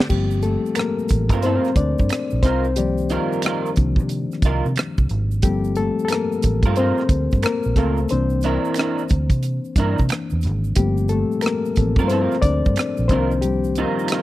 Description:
R&B, neo-soul; 90 BPM; 4/4; swing 64% on 16ths; G minor; A4 = 438 Hz
reed electric piano; accompaniment; 0.0-14.2 s; D3 to D5; -22 LUFS; left 4 dB
tight funk drum kit; drums; 0.0-14.2 s; crash cymbal, hi-hat, kick drum, rim click, snare drum; -20 LUFS; right 1 dB
vintage muted fingered electric bass; bass; 0.1-13.8 s; G1 to C3; -22 LUFS; right 1 dB
egg shaker and finger snaps; percussion; 0.1-14.2 s; -35 LUFS; right 9 dB
electric guitar through a small old amp; second line; 1.3-14.2 s; C4 to Bb4; -24 LUFS; right 5 dB; analog chorus
small room ambience; dry, close 1970s-style studio recording; -18 LUFS; side -16 dB against mid
0.1-14.2 A section
reed electric piano solo 0.1-14.2
0.1 Gm11; 2.4 Cm11; 5.4 Gm11; 8.1 C9; 10.8 Gm11; 13.1 Cm11
| 0.10 0.76 1.43 2.10 | 2.76 3.43 4.10 4.76 | 5.43 6.10 6.76 7.43 | 8.10 8.76 9.43 10.10 | 10.76 11.43 12.10 12.76 | 13.43 14.10

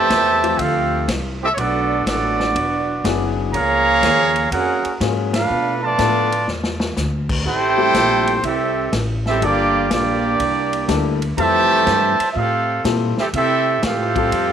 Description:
jazz, big band swing; 122 BPM; 4/4; swing 67% on 8ths; F major; A4 = 440 Hz
warm trumpet section; melody; 0.0-14.5 s; Bb3 to Bb5; -17 LUFS; right 1 dB
mellow trombone section; second line; 0.0-14.5 s; C3 to G4; -25 LUFS; right 10 dB
upright bass; bass; 0.0-14.5 s; E1 to C3; -24 LUFS; left 1 dB
vintage drum kit; drums; 0.1-14.5 s; crash cymbal, hi-hat, kick drum, ride cymbal, snare drum; -26 LUFS; left 1 dB
warm concert grand piano; accompaniment; 0.4-14.5 s; F3 to A4; -24 LUFS; left 14 dB
light reverb, small room ambience; 1960s-style stereo with parts hard left and right; -16 LUFS; side -8 dB against mid
0.0-14.5 A section
band accent 5.2; drum fill 6.5-7.0
0.0 Fmaj9; 1.6 Bm7; 2.6 E9; 3.5 Gbmaj9; 5.5 Bm7b5; 6.5 Dsus2; 7.5 Am7; 9.4 Gm7; 10.4 C13; 11.4 Fmaj9
0.10 0.59 1.08 | 1.57 2.06 2.55 3.04 | 3.53 4.02 4.51 5.00 | 5.49 5.98 6.47 6.96 | 7.45 7.94 8.43 8.92 | 9.41 9.90 10.39 10.88 | 11.37 11.87 12.36 12.85 | 13.34 13.83 14.32

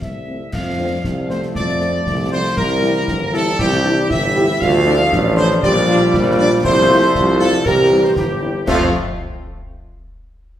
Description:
military-style march for wind band; 118 BPM; 2/4; straight; F major; A4 = 440 Hz
warm trumpet section; melody; 0.0-8.9 s; F4 to F5; -22 LUFS; equal
dark euphonium; second line; 0.0-8.3 s; A3 to G4; -20 LUFS; right 1 dB
small flute group; second line; 0.0-9.0 s; G4 to F5; -22 LUFS; left 1 dB
warm tuba; bass; 0.0-8.9 s; G1 to F2; -19 LUFS; right 1 dB
concert snare drum, concert bass drum and clash cymbals; drums; 0.0-9.0 s; -26 LUFS; left 1 dB
mellow French horn section; accompaniment; 0.3-8.9 s; F3 to F4; -24 LUFS; left 2 dB
dark trombone section; sustained chords; 0.5-8.9 s; E3 to A3; -24 LUFS; equal
wet recital hall reverb, RT60 1.5 s; recorded in a church or concert hall; -13 LUFS; side -11 dB against mid
0.5-8.7 A section; 8.7-9.7 B section
0.0 F; 2.6 C7; 4.6 Dm; 5.6 Gm7/Bb; 6.6 F/C; 7.7 C; 8.7 F
0.02 | 0.53 1.04 | 1.55 2.06 | 2.57 3.08 | 3.59 4.10 | 4.61 5.12 | 5.63 6.13 | 6.64 7.15 | 7.66 8.17 | 8.68

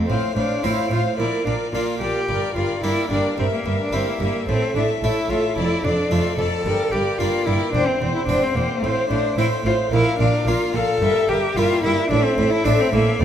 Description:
classical, baroque-style concerto movement with solo episodes; 110 BPM; 4/4; straight; F major; A4 = 440 Hz
harpsichord; accompaniment; 0.0-13.2 s; D2 to F4; -28 LUFS; left 1 dB
warm studio viola section; accompaniment; 0.0-13.2 s; A4 to C5; -25 LUFS; right 2 dB
clear cello; melody; 0.1-13.2 s; Bb3 to A4; -23 LUFS; left 2 dB
warm chamber violin section; melody; 0.1-13.2 s; E5 to A5; -37 LUFS; left 4 dB
clear chamber violin section; second line; 0.1-13.2 s; C5 to F5; -29 LUFS; left 7 dB
dark chamber double bass section; bass; 0.1-13.2 s; E1 to D2; -25 LUFS; right 2 dB
warm chamber cello section; bass; 0.1-13.2 s; D2 to Bb2; -28 LUFS; right 2 dB
wet recital hall reverb, RT60 1.4 s; -18 LUFS; side -9 dB against mid
0.1-13.2 A section
0.1 F/A; 1.2 Bb; 2.3 Gm; 3.4 Edim/G; 4.5 A5; 5.6 Dm/F; 6.7 Gm; 7.7 C/E; 8.8 F/A; 9.9 Bb5; 11.0 Edim/G; 12.1 Am
| 0.09 0.64 1.19 1.74 | 2.29 2.84 3.38 3.93 | 4.48 5.03 5.58 6.12 | 6.66 7.20 7.74 8.29 | 8.84 9.38 9.93 10.47 | 11.02 11.57 12.12 12.66 | 13.21

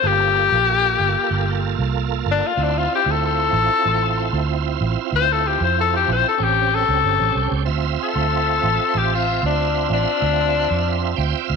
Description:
straight-eighth soul blues; 94 BPM; 4/4; straight; D minor; A4 = 440 Hz
breathy tenor saxophone; melody; 0.0-11.2 s; D4 to C5; -19 LUFS; left 8 dB
bright tonewheel organ; accompaniment; 0.0-11.6 s; Bb3 to G5; -24 LUFS; right 15 dB; slow rotary speaker, overdrive, chorus vibrato
vintage muted fingered electric bass; bass; 0.0-11.6 s; G1 to F2; -22 LUFS; right 3 dB
moderate echo chamber reverb, RT60 1.8 s, small room ambience; 1960s-style stereo with parts hard left and right; -17 LUFS; side -5 dB against mid
0.0-7.7 A section; 7.7-11.6 B section
tenor saxophone solo 0.0-7.7; tonewheel organ fill 10.9-11.6
0.0 Gm7; 2.6 Dm7; 6.4 A7#9; 7.7 Dm7
| 0.04 0.67 1.31 1.94 | 2.58 3.21 3.85 4.49 | 5.12 5.76 6.39 7.03 | 7.67 8.30 8.94 9.58 | 10.22 10.85 11.49

